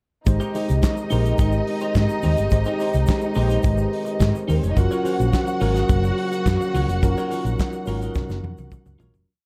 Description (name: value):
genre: disco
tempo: 106 BPM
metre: 4/4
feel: straight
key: Ab major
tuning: A4 = 442 Hz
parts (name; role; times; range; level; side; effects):
- dark studio string section; second line; 0.3-9.0 s; Bb3 to Gb5; -30 LUFS; equal; none
- clean electric guitar; accompaniment; 0.3-9.2 s; Eb4 to Eb5; -37 LUFS; equal; spring reverb
- tine electric piano; accompaniment; 0.3-9.3 s; Gb3 to Eb5; -29 LUFS; equal; none
- dark French horn section; sustained chords; 0.3-9.3 s; Db3 to G4; -32 LUFS; equal; none
- hollow-body short-scale fingered electric bass; bass; 0.3-9.2 s; F1 to Ab2; -24 LUFS; equal; none
- warm soul drum kit; drums; 0.3-9.3 s; handclaps, hi-hat, kick drum, snare drum, toms; -24 LUFS; equal; none
- congas; percussion; 0.3-9.1 s; none; -35 LUFS; equal; none
- egg shaker; percussion; 0.3-9.3 s; none; -50 LUFS; equal; none
room: light reverb, small room ambience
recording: dark, warm production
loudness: -21 LUFS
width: mono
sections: 0.3-9.3 verse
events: fade-out 7.0-9.3; drum fill 8.2-9.3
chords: 0.3 Abmaj7; 4.8 Gbmaj7